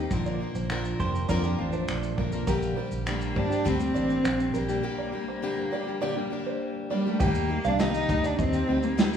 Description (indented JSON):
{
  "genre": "acoustic pop",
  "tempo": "101 BPM",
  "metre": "4/4",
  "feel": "straight",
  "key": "unclear",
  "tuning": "A4 = 440 Hz",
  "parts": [
    { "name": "dark cello", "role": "melody", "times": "0.0-9.2 s", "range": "G3 to Eb4", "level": "-29 LUFS", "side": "equal", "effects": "none" },
    { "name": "picked plugged-in steel-string acoustic guitar", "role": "accompaniment", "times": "0.0-9.2 s", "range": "Bb2 to Bb4", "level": "-30 LUFS", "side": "left 3 dB", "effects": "none" },
    { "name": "vintage muted fingered electric bass", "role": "bass", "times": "0.0-9.2 s", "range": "F1 to F2", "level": "-30 LUFS", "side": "right 1 dB", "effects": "none" },
    { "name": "vintage brush drum kit", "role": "drums", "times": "0.1-9.2 s", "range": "finger snaps, kick drum, shaker, snare drum", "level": "-30 LUFS", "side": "right 1 dB", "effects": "none" },
    { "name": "open-back banjo", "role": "arpeggios", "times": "0.3-8.8 s", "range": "Bb4 to G5", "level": "-35 LUFS", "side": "right 4 dB", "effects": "none" },
    { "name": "direct-recorded clean electric guitar", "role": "second line", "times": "1.0-2.4 s", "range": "A3 to C5", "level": "-35 LUFS", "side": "right 4 dB", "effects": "spring reverb" }
  ],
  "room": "moderate concert hall reverb, RT60 2.2 s",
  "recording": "recorded in a church or concert hall",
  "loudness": "-25 LUFS",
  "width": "side -8 dB against mid",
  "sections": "0.0-7.2 A section; 7.2-9.2 B section",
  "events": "break 4.8-7.2",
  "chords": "0.1 Bb; 2.5 Gm; 7.2 Eb"
}